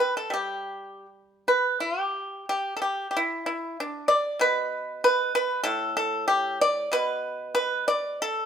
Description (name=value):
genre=chinese traditional, Chinese solo plucked strings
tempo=76-97 BPM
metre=4/4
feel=rubato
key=G gong mode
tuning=A4 = 440 Hz
part: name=pipa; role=solo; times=0.0-8.5 s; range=A2 to D5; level=-24 LUFS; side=equal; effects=none
room=light reverb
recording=band playing live in one room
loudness=-24 LUFS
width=side -8 dB against mid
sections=0.0-1.8 A section; 1.8-8.5 B section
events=none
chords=none